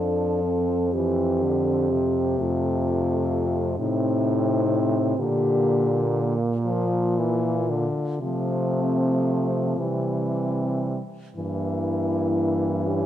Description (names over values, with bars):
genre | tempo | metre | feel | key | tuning
classical, lyrical piece for horn quartet | 37-43 BPM (dotted quarters) | 6/8 | rubato | F major | A4 = 441 Hz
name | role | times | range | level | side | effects
dark French horn | melody | 0.0-13.1 s | C4 to A4 | -26 LUFS | left 4 dB | none
mellow French horn | second line | 0.0-13.1 s | G3 to D4 | -29 LUFS | right 6 dB | none
warm French horn | accompaniment | 0.0-13.1 s | C3 to F3 | -28 LUFS | left 2 dB | none
mellow French horn | bass | 0.0-13.1 s | F2 to C3 | -26 LUFS | right 2 dB | none
room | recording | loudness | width
light reverb | dark, warm production | -21 LUFS | side -11 dB against mid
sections
0.0-13.1 A section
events
none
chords
0.0 F; 2.4 F7; 5.2 Bb; 8.2 F/C; 9.8 C; 11.4 Edim/G